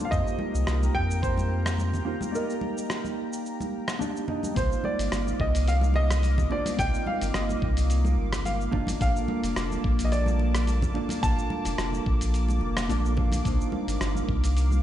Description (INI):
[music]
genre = sunset chillout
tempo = 108 BPM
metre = 4/4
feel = swing 54% on 16ths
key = unclear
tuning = A4 = 440 Hz
[part]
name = warm baby grand piano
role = melody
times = 0.0-12.3 s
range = Bb4 to A5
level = -32 LUFS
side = equal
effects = ping-pong delay
[part]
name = mellow electric guitar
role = accompaniment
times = 0.0-14.8 s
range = Bb3 to F5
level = -32 LUFS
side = right 1 dB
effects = auto-pan, ping-pong delay
[part]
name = lush unison pad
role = sustained chords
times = 0.0-14.8 s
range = Bb3 to D6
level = -36 LUFS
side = equal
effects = chorus, phaser
[part]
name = warm sub bass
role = bass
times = 0.1-14.8 s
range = F1 to F2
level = -25 LUFS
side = equal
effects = none
[part]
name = dusty soul sampler-style drum kit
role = drums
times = 0.1-14.8 s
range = cabasa, hi-hat, rim click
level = -35 LUFS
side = equal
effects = none
[part]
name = electronic kick drum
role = drums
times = 0.1-14.4 s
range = none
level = -28 LUFS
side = equal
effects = none
[part]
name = congas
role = percussion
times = 0.4-14.8 s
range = none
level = -36 LUFS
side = equal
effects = none
[sound]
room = light reverb, digital ambience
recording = played on a big sound system in a bare room, stone room reverb, nothing above 10.6 kHz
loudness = -24 LUFS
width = side -12 dB against mid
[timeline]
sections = 0.0-4.6 A section; 4.6-14.8 B section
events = break 2.3-4.6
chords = 0.1 F9sus4; 2.3 Ebmaj7; 4.6 Cm11; 9.0 Bbmaj7; 13.5 Cm11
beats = | 0.12 0.67 1.23 1.78 | 2.34 2.90 3.45 4.01 | 4.56 5.12 5.67 6.23 | 6.79 7.34 7.90 8.45 | 9.01 9.56 10.12 10.67 | 11.23 11.79 12.34 12.90 | 13.45 14.01 14.56